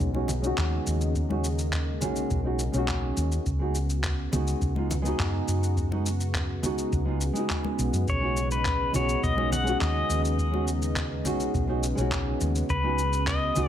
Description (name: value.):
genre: sunset chillout.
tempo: 104 BPM.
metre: 4/4.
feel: straight.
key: B major.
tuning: A4 = 439 Hz.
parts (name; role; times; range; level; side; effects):
nylon-string guitar; accompaniment; 0.0-13.7 s; G#3 to F#4; -31 LUFS; moving between left 1 dB and right 5 dB; auto-pan, low-pass filter, digital delay.
lush unison pad; sustained chords; 0.0-13.7 s; C#3 to F#4; -33 LUFS; equal; chorus.
hollow-body short-scale fingered electric bass; bass; 0.0-13.7 s; B1 to F#2; -28 LUFS; equal; none.
electronic cabasa and handclaps; drums; 0.0-13.7 s; none; -34 LUFS; left 1 dB; none.
electronic kick drum; drums; 0.0-13.4 s; none; -31 LUFS; equal; overdrive.
congas; percussion; 0.1-13.7 s; none; -34 LUFS; left 2 dB; none.
pedal steel guitar; melody; 8.1-13.7 s; B4 to F#5; -28 LUFS; left 3 dB; digital delay.
room: light reverb.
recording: none.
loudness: -24 LUFS.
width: side -10 dB against mid.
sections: 0.0-13.7 A section.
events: none.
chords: 0.0 B69; 3.5 C#7sus4; 8.1 B69; 12.7 C#7sus4.